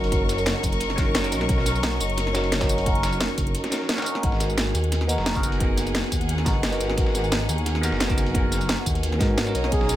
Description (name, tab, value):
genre	liquid drum and bass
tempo	175 BPM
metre	4/4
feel	straight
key	G# minor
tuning	A4 = 438 Hz
part	bell-like tine electric piano	accompaniment	0.0-10.0 s	B3 to A#4	-27 LUFS	equal	phaser, dub echo
part	rich chamber string section	sustained chords	0.0-10.0 s	G#4 to D#6	-31 LUFS	equal	sidechain pumping
part	dark detuned saw bass	bass	0.0-10.0 s	F#1 to G#2	-26 LUFS	equal	none
part	dusty soul sampler-style drum kit	drums	0.0-10.0 s	hi-hat, snare drum	-34 LUFS	equal	high-pass filter on hats, high-pass filter on snare, high-pass filter on room
part	drum and bass drum kit	drums	0.1-10.0 s	hi-hat, snare drum, tambourine	-27 LUFS	equal	none
part	electronic kick drum	drums	0.1-9.8 s	none	-25 LUFS	equal	none
part	breathy flugelhorn	melody	9.7-10.0 s	G#4	-25 LUFS	right 3 dB	none
room	light reverb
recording	none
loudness	-21 LUFS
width	side -13 dB against mid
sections	0.0-10.0 A section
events	break 3.5-4.2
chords	0.0 Bmaj9; 4.2 G#m7